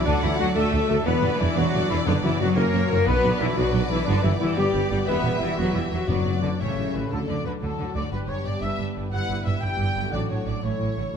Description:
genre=cinematic, heroic adventure film score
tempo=119 BPM (dotted quarters)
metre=6/8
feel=straight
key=B minor, D major from 7.1 s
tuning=A4 = 440 Hz
part: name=warm symphonic violin section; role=melody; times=0.0-11.1 s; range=A4 to G5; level=-35 LUFS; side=left 3 dB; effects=none
part: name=dark symphonic violin section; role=second line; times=0.0-10.9 s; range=D4 to F#5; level=-34 LUFS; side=left 1 dB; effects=none
part: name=mellow clarinet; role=second line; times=0.0-7.1 s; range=C#4 to B4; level=-34 LUFS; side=left 3 dB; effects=none
part: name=warm symphonic viola section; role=accompaniment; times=0.0-11.2 s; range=D3 to G4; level=-34 LUFS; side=equal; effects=none
part: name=mellow French horn section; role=sustained chords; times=0.0-11.2 s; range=A3 to B4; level=-30 LUFS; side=left 6 dB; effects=none
part: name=warm trombone section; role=sustained chords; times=0.0-11.2 s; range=G2 to D4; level=-35 LUFS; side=right 5 dB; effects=none
part: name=concert harp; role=arpeggios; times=0.0-11.2 s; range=E2 to D5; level=-33 LUFS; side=left 11 dB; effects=none
part: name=mellow trumpet section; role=stabs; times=0.0-11.2 s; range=C#4 to G5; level=-32 LUFS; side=equal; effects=none
part: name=bright symphonic cello section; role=bass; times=0.0-11.2 s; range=G2 to B3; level=-29 LUFS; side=right 1 dB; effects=none
part: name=mellow tuba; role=bass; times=0.1-7.0 s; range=E1 to D2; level=-30 LUFS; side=right 4 dB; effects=none
part: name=warm symphonic double bass section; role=bass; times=0.1-11.2 s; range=E1 to F#2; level=-27 LUFS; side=right 2 dB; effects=none
part: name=timpani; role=percussion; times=2.1-2.5, 6.1-6.6, 10.1-10.6 s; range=F#2 to A2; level=-32 LUFS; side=left 5 dB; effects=none
room=light reverb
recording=close, detailed microphones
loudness=-21 LUFS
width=side -7 dB against mid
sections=0.0-7.1 A section; 7.1-11.2 B section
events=none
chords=0.1 D; 1.1 Em7; 2.1 Bm/F#; 2.6 F#; 3.1 Bm; 4.1 G; 5.1 Em; 6.1 Bm/F#; 6.6 A7; 7.1 D; 8.1 G; 9.1 Em/G; 10.1 D/A; 10.6 A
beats=| 0.06 0.56 | 1.06 1.56 | 2.07 2.57 | 3.07 3.57 | 4.07 4.57 | 5.07 5.58 | 6.08 6.60 | 7.11 7.62 | 8.12 8.62 | 9.12 9.62 | 10.12 10.63 | 11.14

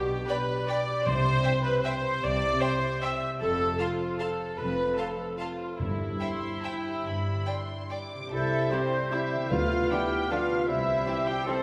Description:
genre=classical, orchestral ballroom waltz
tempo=136-166 BPM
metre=3/4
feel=rubato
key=C major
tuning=A4 = 441 Hz
part: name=warm studio viola section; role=accompaniment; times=0.0-11.6 s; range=D3 to E5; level=-32 LUFS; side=equal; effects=none
part: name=concert harp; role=arpeggios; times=0.0-11.6 s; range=F2 to F5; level=-38 LUFS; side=equal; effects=none
part: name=dark studio double bass section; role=bass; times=0.0-11.0 s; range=F1 to D2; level=-39 LUFS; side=equal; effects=none
part: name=rich symphonic cello section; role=bass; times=0.0-11.6 s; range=F2 to A4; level=-38 LUFS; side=equal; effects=none
part: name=dark studio violin section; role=melody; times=0.3-11.6 s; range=C5 to D6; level=-38 LUFS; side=equal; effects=none
part: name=rich studio violin section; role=second line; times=0.3-11.6 s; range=B3 to A5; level=-40 LUFS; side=equal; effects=none
part: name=timpani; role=percussion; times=1.1-1.6, 5.8-6.4, 9.5-10.1 s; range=G2 to D3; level=-37 LUFS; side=equal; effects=none
part: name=mellow cor anglais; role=second line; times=8.3-11.6 s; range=C4 to G4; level=-36 LUFS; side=equal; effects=none
part: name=mellow flute section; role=second line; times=8.3-11.6 s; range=E6 to G6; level=-39 LUFS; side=equal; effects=none
part: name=warm clarinet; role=second line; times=8.3-11.6 s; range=B4 to C5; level=-40 LUFS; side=equal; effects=none
part: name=dark bassoon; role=accompaniment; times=8.3-11.6 s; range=G3 to B3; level=-38 LUFS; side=equal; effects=none
part: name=mellow French horn section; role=sustained chords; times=8.3-11.6 s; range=C4 to G4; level=-35 LUFS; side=equal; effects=none
room=wet concert hall reverb, RT60 2.3 s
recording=none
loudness=-28 LUFS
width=mono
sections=0.0-8.3 A section; 8.3-11.6 A section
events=none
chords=0.0 G/B; 1.1 C; 3.4 F; 5.8 C/G; 7.1 G; 8.3 C; 9.5 Bdim/D; 10.7 C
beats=0.29 0.69 | 1.06 1.45 1.85 | 2.23 2.61 3.02 | 3.40 3.79 4.20 | 4.59 4.97 5.39 | 5.79 6.21 6.65 | 7.06 7.48 7.92 | 8.32 8.72 9.13 | 9.51 9.91 10.31 | 10.69 11.07 11.47

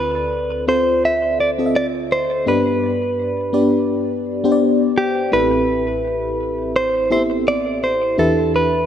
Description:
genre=pop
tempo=84 BPM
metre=4/4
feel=swing 55% on 16ths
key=A minor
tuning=A4 = 437 Hz
part: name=direct-recorded clean electric guitar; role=melody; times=0.0-8.9 s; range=G4 to E5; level=-19 LUFS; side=right 1 dB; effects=digital delay
part: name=FM electric piano with soft pad layer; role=accompaniment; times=0.0-8.9 s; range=A1 to E5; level=-19 LUFS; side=left 1 dB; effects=chorus, tremolo
room=moderate lush hall reverb, RT60 2.4 s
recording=none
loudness=-16 LUFS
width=side -9 dB against mid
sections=0.0-5.3 A section; 5.3-8.9 B section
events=none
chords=0.0 Dm7; 2.5 G; 5.3 Am7; 8.2 Em7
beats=0.33 1.04 1.75 | 2.47 3.18 3.90 4.61 | 5.33 6.04 6.75 7.47 | 8.18

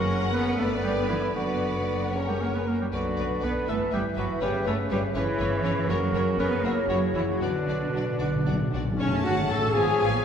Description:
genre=quick classical-period movement for symphony orchestra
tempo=74-82 BPM (dotted quarters)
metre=6/8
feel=rubato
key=B minor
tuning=A4 = 440 Hz
part: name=rich studio violin section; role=melody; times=0.0-10.2 s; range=C#5 to A5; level=-38 LUFS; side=left 3 dB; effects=none
part: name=clear clarinet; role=second line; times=0.0-10.2 s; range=C#4 to B4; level=-34 LUFS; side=left 1 dB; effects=none
part: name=large flute ensemble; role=second line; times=0.0-10.1 s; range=A#4 to A5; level=-36 LUFS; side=left 2 dB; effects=none
part: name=rich studio violin section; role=second line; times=0.0-10.2 s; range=F#4 to A5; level=-38 LUFS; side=left 3 dB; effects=none
part: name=warm cor anglais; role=second line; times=0.0-10.2 s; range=D4 to C#5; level=-34 LUFS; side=right 1 dB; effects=none
part: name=mellow bassoon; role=accompaniment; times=0.0-10.2 s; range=B2 to E#3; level=-33 LUFS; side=left 1 dB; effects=none
part: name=rich studio viola section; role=accompaniment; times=0.0-10.1 s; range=B3 to A4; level=-34 LUFS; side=right 1 dB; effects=none
part: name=mellow French horn section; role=sustained chords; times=0.0-10.2 s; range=C#4 to B4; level=-33 LUFS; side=left 4 dB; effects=none
part: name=rich studio cello section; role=bass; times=0.0-10.2 s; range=D3 to B3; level=-30 LUFS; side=right 2 dB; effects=none
part: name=rich studio double bass section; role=bass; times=0.0-10.2 s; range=F#1 to B1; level=-32 LUFS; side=right 1 dB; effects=none
part: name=timpani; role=percussion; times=7.4-9.0 s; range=B2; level=-31 LUFS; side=left 2 dB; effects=none
room=wet concert hall reverb, RT60 2.3 s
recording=heard from further back in the room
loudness=-23 LUFS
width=side -8 dB against mid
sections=0.0-9.0 A section; 9.0-10.2 B section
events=timpani fill 7.4-9.0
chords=0.0 F#; 0.6 G; 1.4 Bm/F#; 2.1 F#; 2.9 Bm; 3.7 Em/G; 4.4 C#m7b5/G; 5.9 F#; 6.6 F#7; 7.4 Bm; 9.0 F#m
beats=0.58 | 1.36 2.14 | 2.93 3.68 | 4.42 5.15 | 5.89 6.64 | 7.42 8.20 | 9.00 9.75

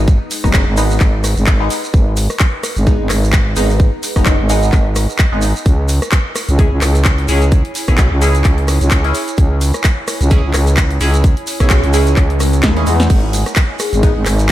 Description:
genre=bass house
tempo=129 BPM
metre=4/4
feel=swing 56% on 16ths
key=G# minor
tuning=A4 = 441 Hz
part: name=growling FM bass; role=bass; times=0.0-14.5 s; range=F#1 to E2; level=-14 LUFS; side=equal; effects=tube saturation, sidechain pumping
part: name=warbly tape-like pad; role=texture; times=0.2-14.5 s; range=D#4 to G#5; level=-30 LUFS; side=right 2 dB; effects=chorus, built-in reverb, sidechain pumping
part: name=electronic kick drum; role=drums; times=0.1-14.5 s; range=none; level=-12 LUFS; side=equal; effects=small room ambience
part: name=shekere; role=percussion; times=0.1-14.5 s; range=none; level=-28 LUFS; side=right 4 dB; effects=none
part: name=house drum kit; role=drums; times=0.3-14.5 s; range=crash cymbal, handclaps, hi-hat, rim click, snare drum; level=-20 LUFS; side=equal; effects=small room ambience
part: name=band-passed chord stab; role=stabs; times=0.4-14.2 s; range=G#3 to G#4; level=-22 LUFS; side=equal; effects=phaser, lush chorus, sidechain pumping, diffuse ambient delay
part: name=swell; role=sound effects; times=12.4-13.1 s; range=none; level=-25 LUFS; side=left 1 dB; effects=none
part: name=damped 70s drum kit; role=drums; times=13.1-14.5 s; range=ride cymbal, snare drum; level=-33 LUFS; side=right 5 dB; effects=high-pass filter on cymbals, small room ambience, high-pass filter on snare, high-pass filter on room
part: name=vibraphone with soft mallets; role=melody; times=13.8-14.0 s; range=G#4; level=-22 LUFS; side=left 8 dB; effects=none
room=light reverb, small room reverb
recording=none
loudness=-11 LUFS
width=side -14 dB against mid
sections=0.0-14.5 A section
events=fade-in on ambient pad 0.0-14.5; filter sweep on FM bass 0.0-14.5; swell 12.4-13.1; drum fill 12.6-13.1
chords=0.0 G#m; 5.7 C#m; 13.1 G#m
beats=| 0.08 0.54 1.01 1.47 | 1.94 2.40 2.87 3.33 | 3.80 4.26 4.73 5.19 | 5.66 6.12 6.59 7.05 | 7.52 7.98 8.45 8.91 | 9.38 9.84 10.31 10.78 | 11.24 11.71 12.17 12.63 | 13.10 13.56 14.03 14.50

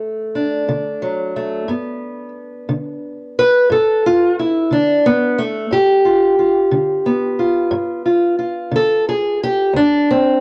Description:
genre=acoustic country blues, solo or duo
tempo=60 BPM (dotted quarters)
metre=12/8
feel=straight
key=unclear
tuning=A4 = 438 Hz
part: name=fingerpicked steel-string acoustic guitar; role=solo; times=0.0-10.4 s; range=D2 to B4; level=-17 LUFS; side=equal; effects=cassette tape
room=moderate spring reverb, RT60 2.2 s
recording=home recording on cassette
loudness=-16 LUFS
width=mono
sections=0.0-10.4 A section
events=steel-string acoustic guitar solo 0.0-10.4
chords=0.0 D; 1.7 G7; 9.7 D7(no3)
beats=0.67 | 1.68 2.69 3.69 4.70 | 5.71 6.71 7.72 8.73 | 9.74

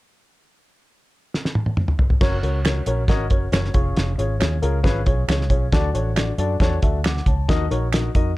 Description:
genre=uptempo 1960s-style soul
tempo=136 BPM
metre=4/4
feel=straight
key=F# major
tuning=A4 = 439 Hz
part: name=cloth-damped thuddy drum kit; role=drums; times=1.3-8.3 s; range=crash cymbal, hi-hat, kick drum, snare drum, toms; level=-20 LUFS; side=equal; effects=none
part: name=dark upright piano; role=accompaniment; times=2.2-8.3 s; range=C#4 to D6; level=-25 LUFS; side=left 3 dB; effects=none
part: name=vintage muted fingered electric bass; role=bass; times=2.2-8.3 s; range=E#1 to F#2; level=-22 LUFS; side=equal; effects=none
part: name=finger snaps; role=percussion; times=2.6-8.0 s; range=none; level=-30 LUFS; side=right 5 dB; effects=none
room=little or no reverb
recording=dark, warm production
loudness=-18 LUFS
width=side -18 dB against mid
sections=0.5-2.2 A section; 2.2-8.4 B section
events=drum fill 1.3-2.2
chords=0.5 N.C.; 2.2 F#; 3.8 C#/E#; 5.7 D; 7.5 D#m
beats=| 0.46 0.90 1.33 1.77 | 2.21 2.65 3.09 3.53 | 3.97 4.41 4.85 5.29 | 5.73 6.17 6.61 7.05 | 7.49 7.93

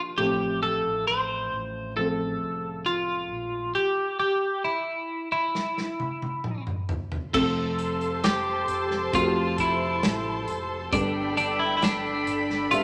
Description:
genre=pop ballad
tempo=67 BPM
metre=4/4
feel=straight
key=F major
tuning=A4 = 441 Hz
part: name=felt-muted upright piano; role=accompaniment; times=0.0-12.8 s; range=G2 to E5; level=-33 LUFS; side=equal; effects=none
part: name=twelve-string electric guitar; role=melody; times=0.2-12.8 s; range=D4 to C5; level=-28 LUFS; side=equal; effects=spring reverb
part: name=fingered electric bass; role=bass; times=0.2-12.8 s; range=F1 to C2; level=-42 LUFS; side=equal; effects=none
part: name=modern studio drum kit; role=drums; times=5.6-12.8 s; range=crash cymbal, hi-hat, kick drum, snare drum, toms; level=-32 LUFS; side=equal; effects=none
part: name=warm studio string section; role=sustained chords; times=7.3-12.8 s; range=F4 to C6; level=-34 LUFS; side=equal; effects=none
room=wet large studio reverb, RT60 1.1 s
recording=none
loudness=-27 LUFS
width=mono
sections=0.0-7.3 A section; 7.3-12.8 B section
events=drum fill 5.5-7.3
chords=0.2 F/A; 3.8 N.C.; 7.3 F; 10.9 Gadd9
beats=| 0.18 1.07 1.97 2.86 | 3.76 4.65 5.55 6.44 | 7.34 8.23 9.13 10.03 | 10.92 11.82 12.71

